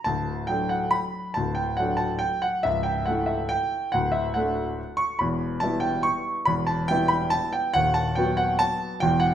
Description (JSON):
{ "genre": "classical, piano waltz", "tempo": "141 BPM", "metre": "3/4", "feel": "rubato", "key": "D major", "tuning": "A4 = 438 Hz", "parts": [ { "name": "clear grand piano", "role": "solo", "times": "0.0-9.3 s", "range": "C#1 to C#6", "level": "-22 LUFS", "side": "equal", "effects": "none" } ], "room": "moderate large studio reverb, RT60 1.1 s", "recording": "heard from further back in the room", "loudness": "-22 LUFS", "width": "side -10 dB against mid", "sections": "0.1-9.3 A section", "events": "none", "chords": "0.1 D; 2.6 A/C#; 3.9 D; 5.2 Em; 7.7 B/D#" }